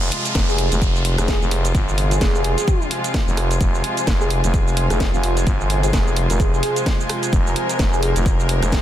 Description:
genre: bass house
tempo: 129 BPM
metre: 4/4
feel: swing 58% on 16ths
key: F minor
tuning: A4 = 441 Hz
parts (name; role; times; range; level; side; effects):
- clear studio string section; sustained chords; 0.0-8.8 s; C3 to Bb4; -27 LUFS; left 2 dB; sidechain pumping
- growling FM bass; bass; 0.0-8.8 s; F1 to G1; -20 LUFS; equal; tube saturation, sidechain pumping
- garage drum kit; drums; 0.0-8.8 s; hi-hat, rim click, shaker, snare drum; -26 LUFS; right 1 dB; none
- downlifter; sound effects; 0.0-3.6 s; none; -28 LUFS; right 1 dB; none
- airy breathy pad; texture; 0.2-8.8 s; F4 to Ab5; -28 LUFS; right 2 dB; chorus, sidechain pumping
- electronic kick drum; drums; 0.4-8.8 s; none; -20 LUFS; equal; none
- airy dreamy lead; melody; 0.5-8.8 s; F4 to Bb4; -26 LUFS; equal; chorus, ping-pong delay
room: little or no reverb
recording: dense, heavily limited modern master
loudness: -16 LUFS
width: side -12 dB against mid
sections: 0.0-8.8 A section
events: none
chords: 0.0 Fm

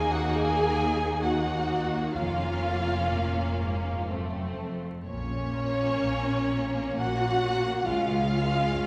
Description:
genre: classical, slow romantic movement for string orchestra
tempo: 60-69 BPM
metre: 3/4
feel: rubato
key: Bb minor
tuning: A4 = 441 Hz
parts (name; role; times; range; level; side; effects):
- warm studio violin section; melody; 0.0-8.9 s; Db5 to Ab5; -33 LUFS; equal; none
- rich studio violin section; second line; 0.0-8.9 s; Ab3 to Eb4; -36 LUFS; equal; none
- warm studio viola section; accompaniment; 0.0-8.9 s; Db4 to Ab4; -33 LUFS; equal; none
- dark studio cello section; bass; 0.0-8.9 s; Db2 to Bb2; -35 LUFS; equal; none
- warm studio double bass section; bass; 0.0-8.9 s; F1 to Eb2; -35 LUFS; equal; none
room: wet concert hall reverb, RT60 2.0 s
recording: recorded in a church or concert hall, vinyl crackle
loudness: -28 LUFS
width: mono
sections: 0.0-8.9 A section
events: none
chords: 0.0 Ebm; 2.2 Bbm/F; 4.1 F; 5.1 Bbm; 7.9 Db

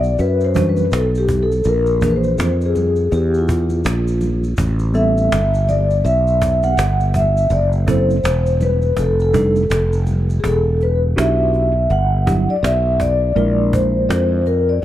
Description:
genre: hip hop, jazz-hop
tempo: 82 BPM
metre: 4/4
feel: swing 61% on 16ths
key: E minor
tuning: A4 = 440 Hz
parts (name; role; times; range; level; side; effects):
- vibraphone with soft mallets; melody; 0.0-14.8 s; E#4 to F#5; -18 LUFS; left 1 dB; tape echo
- sustaining fretless electric bass; bass; 0.0-14.8 s; E1 to F#2; -17 LUFS; equal; wide subtle chorus
- maracas and congas; percussion; 0.0-10.4 s; none; -32 LUFS; equal; none
- cajon; drums; 0.2-14.8 s; none; -23 LUFS; equal; none
- tine electric piano; accompaniment; 0.5-14.4 s; E3 to A#4; -21 LUFS; right 3 dB; medium stereo tremolo
room: small room ambience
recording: dark, warm production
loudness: -14 LUFS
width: side -13 dB against mid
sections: 0.0-10.4 A section; 10.4-14.8 B section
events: vibraphone solo 0.0-10.4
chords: 0.0 Em9; 1.7 A#7#11; 4.6 Am9; 7.5 F#m7b5; 9.0 F13; 10.4 Em9; 13.4 A#7#11

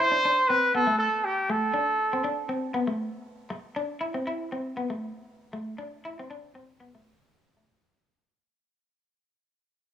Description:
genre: highlife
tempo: 119 BPM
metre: 4/4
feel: straight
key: C major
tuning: A4 = 437 Hz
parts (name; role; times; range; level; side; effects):
- warm trumpet; melody; 0.0-2.5 s; G4 to C5; -23 LUFS; right 1 dB; cassette tape
- electric guitar at the edge of break-up; accompaniment; 0.0-7.8 s; A3 to E4; -31 LUFS; left 2 dB; cassette tape
room: wet spring reverb, RT60 2.5 s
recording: home recording on cassette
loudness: -24 LUFS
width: side -10 dB against mid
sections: 0.0-3.8 A section; 3.8-7.8 B section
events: fade-out 3.8-7.8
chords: 0.0 Cadd9; 0.7 Gsus2/A; 1.7 D5; 2.8 Asus2; 3.8 Cadd9; 4.8 N.C.

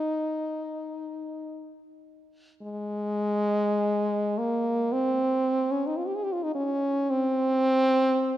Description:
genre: classical, free, expressive piece for unaccompanied French horn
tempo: 33-57 BPM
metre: 4/4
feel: rubato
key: unclear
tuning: A4 = 440 Hz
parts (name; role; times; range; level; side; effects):
- clear French horn; solo; 0.0-8.4 s; Ab3 to Ab4; -24 LUFS; equal; none
room: moderate concert hall reverb, RT60 2.6 s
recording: none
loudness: -24 LUFS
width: side -13 dB against mid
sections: 0.0-2.6 A section; 2.6-8.4 B section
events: none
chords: none

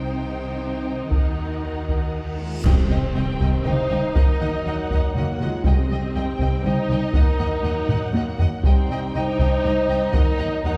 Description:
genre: cinematic, epic orchestral film score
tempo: 120 BPM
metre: 3/4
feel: straight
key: C minor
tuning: A4 = 442 Hz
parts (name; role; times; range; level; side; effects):
- warm symphonic violin section; melody; 0.0-10.8 s; Eb5 to G5; -39 LUFS; equal; none
- warm symphonic violin section; second line; 0.0-10.7 s; Bb4 to G5; -36 LUFS; equal; none
- warm symphonic viola section; accompaniment; 0.0-10.8 s; Ab3 to Eb4; -32 LUFS; equal; none
- mellow French horn section; sustained chords; 0.0-10.8 s; Eb3 to C5; -31 LUFS; equal; none
- warm studio double bass section; bass; 0.0-10.7 s; C2 to Eb2; -31 LUFS; equal; none
- warm symphonic cello section; bass; 0.0-10.7 s; C2 to Eb3; -32 LUFS; equal; none
- timpani; percussion; 0.0-0.3, 2.7-3.4, 5.7-6.4 s; C3; -34 LUFS; equal; none
- solo taiko drums; drums; 1.1-10.6 s; none; -24 LUFS; equal; none
- reverse cymbal and impact; sound effects; 2.4-4.2 s; none; -37 LUFS; equal; none
- clear trombone section; sustained chords; 2.6-10.8 s; Eb3 to Eb4; -35 LUFS; equal; none
- clash cymbals and concert bass drum; percussion; 2.6-3.6 s; none; -32 LUFS; equal; none
room: wet scoring stage reverb, RT60 1.7 s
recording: heard from further back in the room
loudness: -22 LUFS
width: mono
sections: 0.0-2.7 A section; 2.7-10.8 B section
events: reverse cymbal 2.4; band accent 2.7-3.2; impact 2.7-4.2; drum fill 7.9-8.6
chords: 0.0 Cm; 1.1 Ebm; 2.7 Cm; 4.2 Ebm; 5.7 Cm; 7.1 Ebm; 8.6 Cm; 10.1 Ebm

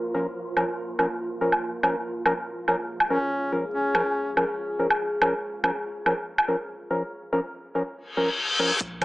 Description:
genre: deep dubstep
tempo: 142 BPM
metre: 4/4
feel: swing 53% on 16ths, half-time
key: Bb minor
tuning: A4 = 441 Hz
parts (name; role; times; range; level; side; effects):
- deep dark ambient pad; sustained chords; 0.0-9.0 s; Bb3 to Bb4; -33 LUFS; left 1 dB; chorus, built-in reverb
- wind-like tuned noise texture; texture; 0.0-7.1 s; F3 to F4; -38 LUFS; right 2 dB; built-in reverb
- percussive organ stab; stabs; 0.1-9.0 s; F3 to Bb4; -27 LUFS; equal; chorus, dub echo
- electronic woodblock and hi-hat; drums; 0.6-9.0 s; none; -24 LUFS; equal; overdrive, low-pass filter on perc, low-pass filter on hats, low-pass filter on room
- warm duduk; melody; 3.1-4.3 s; Db4; -31 LUFS; equal; dub echo
- reverse cymbal; sound effects; 8.1-8.8 s; none; -24 LUFS; left 2 dB; none
- soft dub sub bass; bass; 8.8-9.0 s; Bb1; -40 LUFS; equal; none
- electronic kick drum; drums; 8.8-8.9 s; none; -37 LUFS; equal; overdrive
- congas; percussion; 9.0 s; none; -34 LUFS; right 1 dB; none
room: wet spring reverb, RT60 1.3 s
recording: small speaker sound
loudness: -23 LUFS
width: side -19 dB against mid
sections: 0.0-8.8 A section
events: reverse cymbal 8.1-8.8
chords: 0.0 Bbm

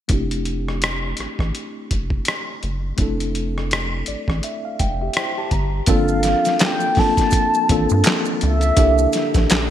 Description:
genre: R&B, neo-soul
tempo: 83 BPM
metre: 4/4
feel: swing 58% on 16ths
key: unclear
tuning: A4 = 438 Hz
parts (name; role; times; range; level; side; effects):
- tine electric piano; accompaniment; 0.1-9.7 s; A3 to Bb5; -24 LUFS; left 1 dB; overdrive, fast stereo tremolo, low-pass filter
- rubbery square bass; bass; 0.1-9.7 s; F1 to G2; -22 LUFS; equal; none
- boom bap sampler-style drum kit; drums; 0.1-9.7 s; handclaps, hi-hat, kick drum, rim click, snare drum; -20 LUFS; equal; gated reverb
- mellow horn-like synth lead; melody; 5.9-9.5 s; E5 to A5; -20 LUFS; equal; chorus, digital delay
- tonewheel organ; sustained chords; 5.9-9.7 s; D3 to A4; -30 LUFS; right 1 dB; chorus vibrato, slow rotary speaker
- maracas and finger snaps; percussion; 5.9-9.7 s; none; -32 LUFS; right 10 dB; none
room: light reverb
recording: bright 1980s-style digital production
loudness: -17 LUFS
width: side -11 dB against mid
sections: 0.1-5.9 A section; 5.9-9.7 B section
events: filter sweep on tine electric piano 0.1-5.9; tine electric piano fill 3.7-5.9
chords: 0.1 Fmaj9; 5.5 Gm; 5.9 Gm9; 8.8 C9

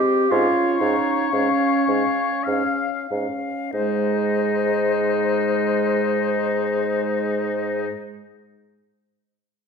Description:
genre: classical, slow romantic movement for wind quintet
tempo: 45-64 BPM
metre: 3/4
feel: rubato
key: Ab major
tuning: A4 = 440 Hz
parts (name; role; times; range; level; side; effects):
- bright concert flute; melody; 0.0-7.9 s; C5 to F5; -26 LUFS; left 9 dB; none
- clear clarinet; accompaniment; 0.0-7.9 s; Ab3 to G4; -24 LUFS; right 4 dB; none
- mellow French horn; accompaniment; 0.0-7.9 s; Ab3 to Db4; -29 LUFS; left 1 dB; none
- clear oboe; second line; 0.3-7.9 s; Eb4 to F5; -26 LUFS; left 6 dB; none
- warm bassoon; bass; 0.3-7.9 s; Ab2; -25 LUFS; right 1 dB; none
room: wet scoring stage reverb, RT60 1.5 s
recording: minimal, uncompressed stereo recording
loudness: -19 LUFS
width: side -6 dB against mid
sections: 0.0-3.7 A section; 3.7-7.4 B section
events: slowing down 0.0-3.7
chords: 0.3 Db/Ab; 3.7 Ab

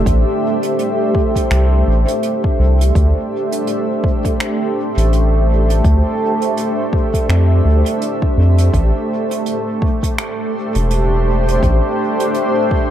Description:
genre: ambient dub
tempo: 83 BPM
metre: 4/4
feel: swing 58% on 16ths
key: A minor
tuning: A4 = 440 Hz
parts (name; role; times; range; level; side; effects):
- granular cloud pad; sustained chords; 0.0-12.9 s; A3 to E5; -17 LUFS; equal; built-in reverb
- soft dub sub bass; bass; 0.0-11.8 s; E1 to F2; -12 LUFS; equal; tube saturation
- electronic kick drum; drums; 0.1-12.9 s; none; -17 LUFS; equal; none
- soft brush drum kit; drums; 0.1-12.5 s; finger snaps, hi-hat; -27 LUFS; right 3 dB; dub echo
room: light reverb, small room ambience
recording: none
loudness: -13 LUFS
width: side -11 dB against mid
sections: 0.0-12.9 A section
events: none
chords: 0.0 Am7; 3.0 D7sus2; 8.7 Am7

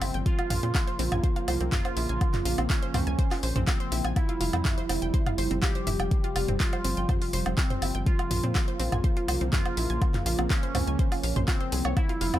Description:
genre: melodic techno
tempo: 123 BPM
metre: 4/4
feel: straight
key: unclear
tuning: A4 = 440 Hz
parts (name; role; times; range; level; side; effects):
- resonant sweep polysynth; melody; 0.0-12.4 s; C4 to G4; -33 LUFS; right 2 dB; chorus, sidechain pumping, dub echo
- warm analog pad; sustained chords; 0.0-12.4 s; C3 to Bb3; -36 LUFS; equal; chorus, sidechain pumping
- wide unison pluck; arpeggios; 0.0-12.4 s; C4 to Ab6; -36 LUFS; right 1 dB; sidechain pumping, dub echo
- tight sequencer bass; bass; 0.0-12.4 s; F1 to Bb2; -29 LUFS; equal; sidechain pumping
- deep house drum kit; drums; 0.0-12.4 s; handclaps, hi-hat, toms, woodblock; -31 LUFS; equal; sidechain pumping on hats, sidechain pumping on perc, sidechain pumping on toms
- electronic kick drum; drums; 0.3-12.1 s; none; -26 LUFS; equal; none
room: little or no reverb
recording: none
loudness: -24 LUFS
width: side -13 dB against mid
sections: 0.0-12.4 A section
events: none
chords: 0.3 Bbm; 4.2 Fsus2; 8.1 Bbm

